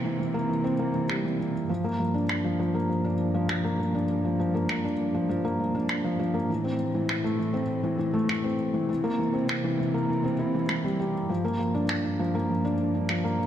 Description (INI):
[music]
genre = piano and strings electronica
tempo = 100 BPM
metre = 4/4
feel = straight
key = G dorian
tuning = A4 = 439 Hz
[part]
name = felt-muted upright piano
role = riff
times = 0.0-13.5 s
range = E3 to G4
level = -25 LUFS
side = equal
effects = ping-pong delay
[part]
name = warm symphonic cello section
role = bass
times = 0.0-13.5 s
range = G2 to C3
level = -34 LUFS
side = equal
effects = none
[part]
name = electronic finger snaps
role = drums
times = 1.1-13.2 s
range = none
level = -34 LUFS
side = right 1 dB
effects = low-pass filter on snare, low-pass filter on room
[sound]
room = moderate echo chamber reverb, RT60 1.9 s, small room ambience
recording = none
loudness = -24 LUFS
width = side -10 dB against mid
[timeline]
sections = 0.0-13.5 A section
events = none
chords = 0.0 C7; 1.7 Gm7; 6.5 Am; 8.9 C7; 11.3 Gm7